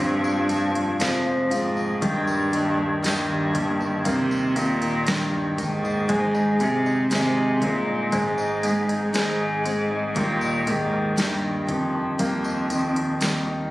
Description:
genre	pop ballad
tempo	59 BPM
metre	4/4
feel	straight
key	unclear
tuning	A4 = 439 Hz
part	rich cello	melody	0.0-13.7 s	F2 to C3	-24 LUFS	right 1 dB	plate reverb, tape echo
part	clear baby grand piano	accompaniment	0.0-13.7 s	Eb3 to Eb4	-27 LUFS	left 1 dB	none
part	picked steel-string acoustic guitar	arpeggios	0.0-13.7 s	F2 to Ab4	-28 LUFS	equal	none
part	sub bass with octave	bass	0.0-13.7 s	Eb1 to Ab1	-40 LUFS	equal	none
part	tambourine	percussion	0.2-13.4 s	none	-38 LUFS	left 1 dB	none
part	smooth R&B drum kit	drums	0.5-13.5 s	hi-hat, kick drum, snare drum	-28 LUFS	equal	none
room	moderate studio reverb, RT60 0.6 s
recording	recorded on a phone in the room, studio reverb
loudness	-21 LUFS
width	side -17 dB against mid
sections	0.0-13.7 A section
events	none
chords	0.0 Fm; 2.0 Eb; 6.1 Ab; 10.2 Eb

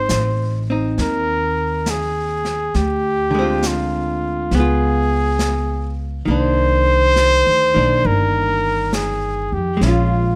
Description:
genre	jazz ballad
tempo	68 BPM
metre	4/4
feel	swing 67% on 8ths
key	unclear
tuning	A4 = 440 Hz
part	mellow trumpet	melody	0.0-10.4 s	F4 to C5	-21 LUFS	equal	none
part	archtop guitar, miked and amplified	accompaniment	0.0-10.4 s	D3 to F4	-26 LUFS	equal	none
part	upright bass	bass	0.0-10.4 s	G1 to F2	-23 LUFS	equal	none
part	vintage brush drum kit	drums	0.1-10.4 s	brushed snare drum, hi-hat, snare drum	-30 LUFS	equal	none
room	light reverb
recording	none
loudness	-18 LUFS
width	mono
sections	0.0-10.4 A section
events	none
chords	0.0 Ab; 2.7 Dm7b5; 4.5 Db7; 6.3 Cm9; 9.8 Bbm7

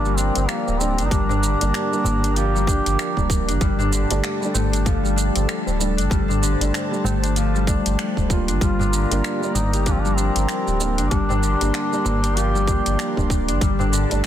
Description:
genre	organic downtempo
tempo	96 BPM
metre	4/4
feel	swing 59% on 16ths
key	G minor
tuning	A4 = 440 Hz
part	warm duduk	melody	0.0-3.3, 8.6-13.3 s	Bb3 to G4	-26 LUFS	equal	ping-pong delay
part	felt-muted upright piano	accompaniment	0.0-14.3 s	G3 to D5	-28 LUFS	right 3 dB	sidechain pumping, ping-pong delay
part	warm analog pad	sustained chords	0.0-14.3 s	G4 to C6	-30 LUFS	equal	chorus, sidechain pumping
part	Celtic harp	arpeggios	0.0-14.3 s	D3 to G4	-26 LUFS	left 5 dB	ping-pong delay
part	warm sub bass	bass	0.0-14.2 s	D1 to G1	-22 LUFS	equal	sidechain pumping
part	deep house drum kit	drums	0.1-14.3 s	finger snaps, hi-hat, shaker	-28 LUFS	right 1 dB	overdrive, soft clipping on snare
part	tabla	percussion	0.4-14.2 s	none	-30 LUFS	right 1 dB	none
part	electronic kick drum	drums	1.1-13.8 s	none	-22 LUFS	equal	none
room	light reverb, small room ambience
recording	dense, heavily limited modern master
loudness	-18 LUFS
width	side -11 dB against mid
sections	0.0-14.3 A section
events	none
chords	0.0 Gm; 3.6 Dsus4

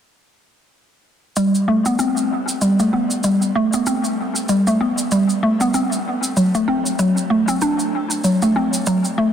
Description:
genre	organic downtempo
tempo	96 BPM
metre	4/4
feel	swing 58% on 16ths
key	A dorian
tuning	A4 = 440 Hz
part	mallet-like synth pluck	arpeggios	1.4-9.3 s	F#3 to D4	-16 LUFS	equal	analog chorus, tape echo, shimmer reverb
part	cabasa	drums	1.4-9.2 s	none	-26 LUFS	right 1 dB	overdrive
room	wet lush hall reverb, RT60 2.3 s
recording	dense, heavily limited modern master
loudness	-16 LUFS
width	side -9 dB against mid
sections	1.4-9.3 A section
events	filter sweep on synth pluck 1.4-9.3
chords	none

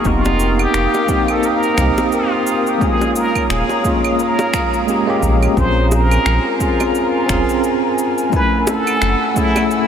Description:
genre	sunset chillout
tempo	87 BPM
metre	4/4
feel	swing 58% on 16ths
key	Bb minor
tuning	A4 = 440 Hz
part	trumpet with plunger mute	melody	0.0-9.9 s	Fb4 to C5	-21 LUFS	equal	tape echo
part	bell-like tine electric piano	accompaniment	0.0-9.9 s	Ab3 to Ab5	-18 LUFS	moving between left 3 dB and right 4 dB	fast stereo tremolo, auto-pan, tape echo
part	airy breathy pad	sustained chords	0.0-9.9 s	A3 to Fb6	-21 LUFS	equal	chorus
part	electronic cabasa, claves and finger snaps	drums	0.0-9.9 s	none	-27 LUFS	right 1 dB	overdrive
part	warm sub bass	bass	0.1-9.2 s	Eb1 to C2	-17 LUFS	equal	none
part	electronic kick drum	drums	0.1-9.5 s	none	-22 LUFS	equal	overdrive
part	bongos	percussion	0.3-9.7 s	none	-28 LUFS	right 1 dB	none
room	wet huge ambient reverb, RT60 7.0 s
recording	dreamy mix soaked in reverb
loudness	-14 LUFS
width	side -8 dB against mid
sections	0.0-5.6 A section; 5.6-9.9 B section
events	none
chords	0.1 F9sus4; 2.8 Eb9sus4; 5.6 Bbm9; 8.3 Gbm9

